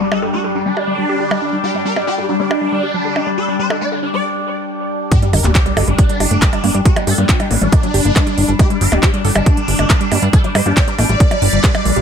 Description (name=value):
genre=psychedelic trance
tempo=138 BPM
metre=4/4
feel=straight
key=unclear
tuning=A4 = 440 Hz
part: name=swarming rave lead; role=melody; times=0.0-12.0 s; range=G3 to D5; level=-20 LUFS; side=equal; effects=chorus, phaser, cassette tape, sidechain pumping, tape echo
part: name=overtone-sweeping drone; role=sustained chords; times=0.0-12.0 s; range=G3 to D4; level=-21 LUFS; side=left 2 dB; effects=chorus, built-in reverb, phaser, sidechain pumping
part: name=woody wave-folded pluck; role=riff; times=0.0-12.0 s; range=F#3 to A4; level=-22 LUFS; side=moving between left 5 dB and right 5 dB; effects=chorus, auto-pan, sidechain pumping, tape echo
part: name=granular cloud pad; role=texture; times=0.0-4.2 s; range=G4 to G5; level=-27 LUFS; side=equal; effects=built-in reverb, sidechain pumping
part: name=techno drum kit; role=drums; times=0.1-12.0 s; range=handclaps, hi-hat, percussion blips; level=-20 LUFS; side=right 2 dB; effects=none
part: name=electronic kick drum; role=drums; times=5.1-11.7 s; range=none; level=-13 LUFS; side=equal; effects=none
part: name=sub drop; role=sound effects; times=5.1-6.9 s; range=none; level=-21 LUFS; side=equal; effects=none
part: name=plucky analog bass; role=bass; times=5.3-12.0 s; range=D1 to G2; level=-16 LUFS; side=equal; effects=none
room=light reverb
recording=none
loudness=-12 LUFS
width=side -7 dB against mid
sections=0.0-5.1 A section; 5.1-12.0 B section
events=break 4.2-5.1; drop 5.1-12.0; impact 5.1-6.9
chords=0.0 G5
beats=0.33 0.77 1.20 | 1.64 2.07 2.51 2.94 | 3.38 3.81 4.25 4.68 | 5.12 5.55 5.99 6.42 | 6.86 7.29 7.72 8.16 | 8.59 9.03 9.46 9.90 | 10.33 10.77 11.20 11.64